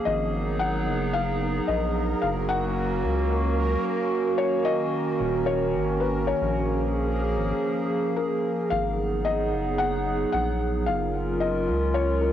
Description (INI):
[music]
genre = IDM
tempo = 111 BPM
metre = 4/4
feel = straight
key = unclear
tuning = A4 = 440 Hz
[part]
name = warbly tape-like pad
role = sustained chords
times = 0.0-12.3 s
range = Eb3 to Bb4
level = -26 LUFS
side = right 1 dB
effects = chorus, built-in reverb, cassette tape
[part]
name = felt-muted upright piano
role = melody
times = 0.1-12.3 s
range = Bb4 to Gb5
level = -29 LUFS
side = left 5 dB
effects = cassette tape, analog delay
[part]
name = round analog bass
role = bass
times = 0.1-12.3 s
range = Eb1 to Db2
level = -28 LUFS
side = equal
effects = none
[part]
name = bubbling stepped-filter texture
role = texture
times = 0.4-8.7 s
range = Bb4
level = -34 LUFS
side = right 3 dB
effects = chorus, built-in reverb, cassette tape
[sound]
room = moderate studio reverb, RT60 0.5 s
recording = home recording on cassette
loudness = -23 LUFS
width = side -10 dB against mid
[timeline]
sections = 0.0-8.7 A section; 8.7-12.3 A section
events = none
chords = 0.1 Abm7; 2.2 Gb; 4.4 Ebm7; 6.6 Bbm7; 8.7 Abm7; 10.9 Gbmaj7